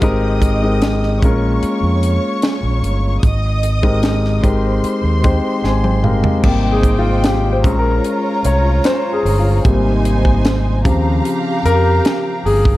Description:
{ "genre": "lush 1970s-style soul", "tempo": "75 BPM", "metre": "4/4", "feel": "straight", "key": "Ab major", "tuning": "A4 = 439 Hz", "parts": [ { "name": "warm studio string section", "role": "second line", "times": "0.0-12.8 s", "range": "Eb4 to Eb6", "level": "-23 LUFS", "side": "right 1 dB", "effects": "none" }, { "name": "warm concert grand piano", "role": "accompaniment", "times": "0.0-12.8 s", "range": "C3 to Ab5", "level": "-18 LUFS", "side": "left 2 dB", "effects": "none" }, { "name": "overdriven fingered electric bass", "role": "bass", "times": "0.0-12.8 s", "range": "G1 to F2", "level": "-16 LUFS", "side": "equal", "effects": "none" }, { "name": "tight funk drum kit", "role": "drums", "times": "0.0-12.8 s", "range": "crash cymbal, hi-hat, kick drum, snare drum, toms", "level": "-17 LUFS", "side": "right 1 dB", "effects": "none" } ], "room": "small room ambience", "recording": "none", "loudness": "-13 LUFS", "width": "side -16 dB against mid", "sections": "0.0-6.4 A section; 6.4-12.8 B section", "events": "grand piano fill 5.2-6.4; drum fill 5.6-6.4; grand piano solo 6.4-12.8", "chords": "0.0 Abmaj9; 1.2 Bbm7; 3.2 Abmaj9; 4.4 Abmaj7; 6.4 Abmaj9; 7.6 Bbm7; 9.7 Abmaj9; 10.9 Eb13" }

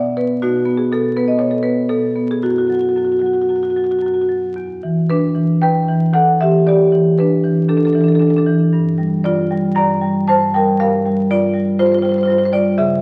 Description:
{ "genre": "classical, contemporary piece for solo marimba", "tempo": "110-123 BPM", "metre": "4/4", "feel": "rubato", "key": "F# minor, E minor from 4.6 s", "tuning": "A4 = 440 Hz", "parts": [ { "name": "marimba with medium mallets", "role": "solo", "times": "0.0-13.0 s", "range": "E2 to Bb5", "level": "-16 LUFS", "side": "equal", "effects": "none" } ], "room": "wet stone room reverb, RT60 1.3 s", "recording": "very old 78 rpm record, vinyl crackle", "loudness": "-16 LUFS", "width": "mono", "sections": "0.0-4.6 A section; 4.6-13.0 B section", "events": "none", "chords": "0.4 B7; 2.4 F#m7; 4.6 Em7; 6.7 Gadd9/E; 8.7 Gm7; 10.8 A#add9/G" }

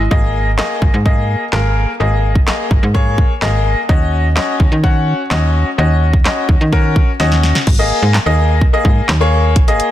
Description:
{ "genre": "dance-pop", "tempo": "127 BPM", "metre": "4/4", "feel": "straight", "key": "unclear", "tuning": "A4 = 440 Hz", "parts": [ { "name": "slap-like FM bass", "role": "bass", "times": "0.0-9.8 s", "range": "G#1 to D#3", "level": "-14 LUFS", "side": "equal", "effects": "sidechain pumping" }, { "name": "bright grand piano", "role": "accompaniment", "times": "0.1-9.9 s", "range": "A#3 to F#5", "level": "-17 LUFS", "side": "left 2 dB", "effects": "sidechain pumping" }, { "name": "house drum kit", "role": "drums", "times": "0.1-9.9 s", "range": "crash cymbal, handclaps, hi-hat, kick drum, snare drum", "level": "-14 LUFS", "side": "equal", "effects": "none" } ], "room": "light reverb, digital ambience", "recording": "dense, heavily limited modern master", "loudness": "-11 LUFS", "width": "side -13 dB against mid", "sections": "0.0-7.7 A section; 7.7-9.9 B section", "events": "drum fill 7.2-7.7", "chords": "0.1 G#sus2; 3.9 D#m7; 7.7 G#sus2" }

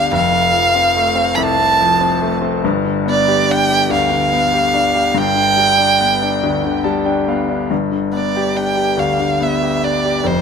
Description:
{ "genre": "pop", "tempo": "47 BPM (dotted quarters)", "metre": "6/8", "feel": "straight", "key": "G mixolydian", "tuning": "A4 = 440 Hz", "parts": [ { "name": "warm violin", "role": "melody", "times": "0.0-10.4 s", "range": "C5 to B5", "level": "-15 LUFS", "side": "right 2 dB", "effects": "ping-pong delay" }, { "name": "clear concert grand piano", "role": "accompaniment", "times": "0.0-10.4 s", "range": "F1 to A5", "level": "-17 LUFS", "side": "left 2 dB", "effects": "none" } ], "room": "light reverb", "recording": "none", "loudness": "-13 LUFS", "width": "side -6 dB against mid", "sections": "0.0-7.7 A section; 7.7-10.4 A section", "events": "grand piano fill 6.4-7.7", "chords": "0.1 F; 2.7 G" }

